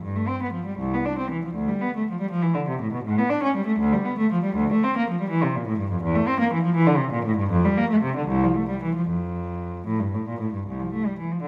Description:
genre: classical, baroque-style suite movement for unaccompanied cello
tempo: 74-83 BPM (dotted quarters)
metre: 6/8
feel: rubato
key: F major from 4.5 s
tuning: A4 = 441 Hz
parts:
  - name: dark cello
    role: solo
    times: 0.0-11.5 s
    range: C2 to D4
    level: -24 LUFS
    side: equal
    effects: none
room: moderate recital hall reverb, RT60 1.3 s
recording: none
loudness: -24 LUFS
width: mono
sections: 0.0-10.7 A section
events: none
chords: none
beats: | 0.04 0.79 | 1.56 2.30 | 3.04 3.78 | 4.55 5.29 | 6.02 6.74 | 7.52 8.29 | 9.07 9.87 | 10.66 11.42

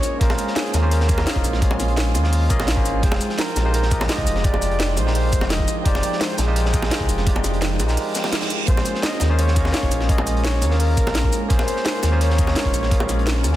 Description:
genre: liquid drum and bass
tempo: 170 BPM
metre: 4/4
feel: straight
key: Bb minor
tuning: A4 = 440 Hz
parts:
  - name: mellow flugelhorn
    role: melody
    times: 0.0-13.6 s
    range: Ab4 to Eb5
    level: -28 LUFS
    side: equal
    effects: digital delay
  - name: barky tine electric piano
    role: accompaniment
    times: 0.0-13.6 s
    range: Ab3 to G5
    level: -26 LUFS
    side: equal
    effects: medium stereo tremolo
  - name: airy breathy pad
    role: sustained chords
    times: 0.0-13.6 s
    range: F3 to C6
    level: -30 LUFS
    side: right 1 dB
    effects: chorus, phaser, vintage 12-bit sampler grit, sidechain pumping
  - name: crunchy breakbeat drum kit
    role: drums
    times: 0.0-13.6 s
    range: hi-hat, snare drum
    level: -32 LUFS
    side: equal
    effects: high-pass filter on hats, high-pass filter on snare, high-pass filter on room
  - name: garage drum kit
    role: drums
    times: 0.0-13.5 s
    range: hi-hat, shaker, snare drum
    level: -26 LUFS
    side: equal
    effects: none
  - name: sub bass with octave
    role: bass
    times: 0.2-13.6 s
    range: F1 to Eb2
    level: -21 LUFS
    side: equal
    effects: none
  - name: electronic kick drum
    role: drums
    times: 0.2-13.0 s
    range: none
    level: -21 LUFS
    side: equal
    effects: none
  - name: bongos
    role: percussion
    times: 0.3-13.5 s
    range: none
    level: -30 LUFS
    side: equal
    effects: none
  - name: reverse cymbal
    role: sound effects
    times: 8.1-8.7 s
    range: none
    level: -29 LUFS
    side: right 6 dB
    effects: none
room: light reverb, small room ambience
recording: dense, heavily limited modern master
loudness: -17 LUFS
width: side -14 dB against mid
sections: 0.0-13.6 A section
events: reverse cymbal 8.1-8.7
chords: 0.0 Bbm9; 3.0 Fm9; 8.7 Bbm9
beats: | 0.21 0.56 0.92 1.27 | 1.62 1.97 2.33 2.68 | 3.03 3.38 3.74 4.09 | 4.44 4.80 5.15 5.50 | 5.86 6.21 6.56 6.92 | 7.27 7.62 7.97 8.33 | 8.68 9.03 9.38 9.74 | 10.09 10.44 10.80 11.15 | 11.50 11.86 12.21 12.56 | 12.91 13.27

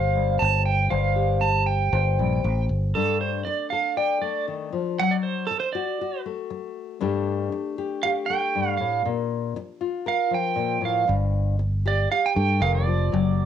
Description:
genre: acoustic folk duo or small band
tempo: 118 BPM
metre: 4/4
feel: straight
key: G minor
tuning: A4 = 444 Hz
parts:
  - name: pedal steel guitar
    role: melody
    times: 0.0-13.5 s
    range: A4 to A5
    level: -24 LUFS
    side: right 7 dB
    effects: cassette tape
  - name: nylon-string guitar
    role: accompaniment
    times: 0.0-13.5 s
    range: G2 to D5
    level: -27 LUFS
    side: left 8 dB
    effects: cassette tape
  - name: fingered electric bass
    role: bass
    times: 0.0-2.9, 11.1-13.5 s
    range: F1 to G2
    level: -22 LUFS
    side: equal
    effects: none
room: moderate studio reverb, RT60 0.5 s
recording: home recording on cassette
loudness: -22 LUFS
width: side -9 dB against mid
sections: 0.0-2.9 A section; 2.9-13.5 B section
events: pedal steel guitar solo 2.9-13.5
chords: 0.0 Fsus2/G; 2.9 Gsus2; 5.0 D/F#; 7.0 Gsus2; 9.0 Bb5; 11.1 Gsus2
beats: 0.41 | 0.92 1.43 1.93 2.44 | 2.95 3.46 3.96 4.47 | 4.98 5.49 5.99 6.50 | 7.01 7.52 8.03 8.53 | 9.04 9.55 10.06 10.57 | 11.08 11.59 12.10 12.61 | 13.12

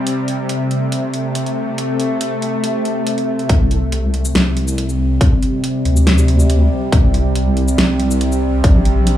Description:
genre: deep dubstep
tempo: 140 BPM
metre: 4/4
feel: half-time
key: unclear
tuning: A4 = 442 Hz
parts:
  - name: bowed-like drone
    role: sustained chords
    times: 0.0-9.2 s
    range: C3 to A3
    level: -18 LUFS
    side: equal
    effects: built-in reverb
  - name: dubstep drum kit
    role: drums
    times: 0.1-9.2 s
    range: hi-hat, shaker, snare drum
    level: -21 LUFS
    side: equal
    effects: small room ambience
  - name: deep soft wobble bass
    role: bass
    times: 3.5-9.2 s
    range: Bb1 to D2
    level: -15 LUFS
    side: equal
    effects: chorus
  - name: electronic kick drum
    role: drums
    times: 3.5-8.7 s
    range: none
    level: -13 LUFS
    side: equal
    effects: small room ambience
room: light reverb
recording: small room reverb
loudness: -14 LUFS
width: side -12 dB against mid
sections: 0.0-3.5 A section; 3.5-9.2 B section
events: build-up 3.5-9.2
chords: 0.0 C5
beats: | 0.07 0.50 0.92 1.35 | 1.78 2.21 2.64 3.07 | 3.50 3.92 4.35 4.78 | 5.21 5.64 6.07 6.50 | 6.92 7.35 7.78 8.21 | 8.64 9.07

